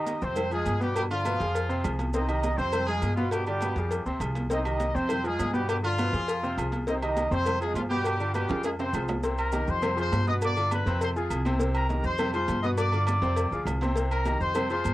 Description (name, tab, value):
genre	latin, salsa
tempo	203 BPM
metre	4/4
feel	straight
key	C harmonic minor from 9.2 s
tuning	A4 = 440 Hz
part	brilliant horn section	melody	0.0-9.1 s	F3 to Eb5	-30 LUFS	equal	cassette tape
part	bright upright piano	accompaniment	0.0-14.9 s	B2 to C5	-32 LUFS	left 1 dB	cassette tape
part	agogo bells and timbales	percussion	0.1-14.9 s	none	-36 LUFS	right 4 dB	none
part	congas	percussion	0.1-14.9 s	none	-37 LUFS	equal	none
part	cowbell	percussion	0.1-14.9 s	none	-34 LUFS	left 2 dB	none
part	maracas	percussion	0.1-14.9 s	none	-49 LUFS	right 5 dB	none
part	upright bass	bass	0.2-14.9 s	C2 to G2	-30 LUFS	equal	none
part	bright trumpet section	melody	9.4-14.9 s	Ab4 to Eb6	-29 LUFS	left 1 dB	cassette tape
room	moderate booth ambience, RT60 0.3 s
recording	home recording on cassette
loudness	-25 LUFS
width	side -16 dB against mid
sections	0.0-9.2 A section; 9.2-14.9 B section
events	drum fill 8.5-9.2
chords	0.4 Fm; 1.0 G7; 1.5 Fm; 2.1 Cm; 2.7 Fm; 3.3 G7; 3.9 Fm; 4.5 Cm; 5.1 Fm; 5.7 G7; 6.3 Fm; 6.9 Cm; 7.5 Fm; 8.1 G7; 8.6 Fm; 9.2 Cm7; 9.8 Fm; 10.4 G7; 11.0 Fm; 11.6 Cm7; 12.2 Fm; 12.8 G7; 13.4 Fm; 14.0 Cm7